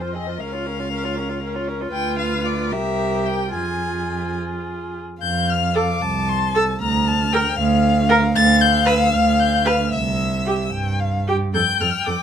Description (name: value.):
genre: quick classical-period movement for string quartet.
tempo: 76 BPM (dotted quarters).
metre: 6/8.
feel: rubato.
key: F minor, F major from 5.2 s.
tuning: A4 = 440 Hz.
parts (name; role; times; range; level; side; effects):
rich violin; melody; 0.0-12.2 s; C5 to A6; -23 LUFS; left 6 dB; none.
warm violin; second line; 0.0-12.2 s; Ab4 to Bb5; -24 LUFS; left 4 dB; none.
rich viola; accompaniment; 0.0-12.1 s; C4 to B4; -23 LUFS; right 2 dB; none.
warm cello; bass; 0.0-12.2 s; C2 to G2; -22 LUFS; right 4 dB; none.
room: little or no reverb.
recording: close, detailed microphones.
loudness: -17 LUFS.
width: side -8 dB against mid.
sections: 0.0-5.2 A section; 5.2-12.2 A section.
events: none.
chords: 0.4 Bbm/Db; 1.9 Dm6; 2.7 C7; 3.5 Fm; 5.2 F; 6.8 Bb/D; 8.4 Dmadd11; 9.9 C; 11.5 F.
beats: | 0.40 1.18 | 1.94 2.72 | 3.55 4.39 | 5.23 6.03 | 6.82 7.59 | 8.36 9.13 | 9.93 10.73 | 11.54.